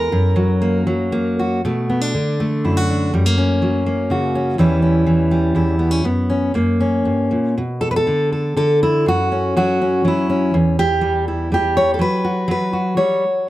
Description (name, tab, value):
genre	folk, solo fingerstyle acoustic guitar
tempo	122 BPM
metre	3/4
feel	rubato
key	B minor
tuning	A4 = 440 Hz
part	fingerpicked steel-string acoustic guitar	solo	0.0-13.5 s	E2 to C#5	-15 LUFS	equal	none
room	studio reverb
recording	dry, close 1970s-style studio recording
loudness	-15 LUFS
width	side -15 dB against mid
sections	0.0-1.6 A section; 1.6-7.6 B section; 7.6-13.5 C section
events	none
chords	0.1 F#; 1.6 Bm7; 3.1 F#; 4.6 C#dim/E; 6.0 F#sus4; 6.5 F#; 7.6 Bm7; 9.1 F#5; 10.5 Em6; 12.0 N.C.; 12.5 F#5